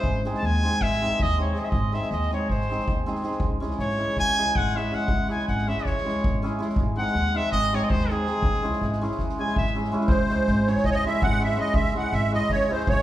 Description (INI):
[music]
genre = balkan folk, Balkan wedding band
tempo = 323 BPM (eighths)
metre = 9/8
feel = straight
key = C# harmonic minor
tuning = A4 = 440 Hz
[part]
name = clear trumpet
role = second line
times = 0.0-9.8 s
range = G#4 to A5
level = -27 LUFS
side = equal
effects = none
[part]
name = hammered dulcimer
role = accompaniment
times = 0.0-13.0 s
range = G#3 to G#4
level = -27 LUFS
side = equal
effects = none
[part]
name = upright bass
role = bass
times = 0.0-13.0 s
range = G#1 to D#2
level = -28 LUFS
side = equal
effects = none
[part]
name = soft-mallet drum kit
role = percussion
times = 0.0-13.0 s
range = kick drum, snare drum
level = -28 LUFS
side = equal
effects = none
[part]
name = musette accordion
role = melody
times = 10.1-13.0 s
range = B#4 to F#5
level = -24 LUFS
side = right 2 dB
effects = none
[sound]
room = wet recital hall reverb, RT60 1.5 s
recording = recorded in a church or concert hall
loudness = -22 LUFS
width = side -13 dB against mid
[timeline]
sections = 0.0-10.1 A section; 10.1-13.0 B section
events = trumpet solo 0.0-10.1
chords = 0.0 G#; 3.4 C#m; 6.8 G#; 8.4 C#m